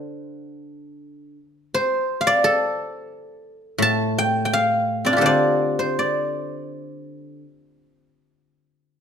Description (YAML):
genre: chinese traditional, Chinese solo plucked strings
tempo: 77-89 BPM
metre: 2/4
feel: rubato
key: D yu mode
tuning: A4 = 440 Hz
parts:
  - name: guzheng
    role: solo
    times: 0.0-8.1 s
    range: A2 to A5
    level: -20 LUFS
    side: equal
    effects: none
room: light reverb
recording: none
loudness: -18 LUFS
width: side -7 dB against mid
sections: 0.0-1.0 A section; 1.0-9.0 B section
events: none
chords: none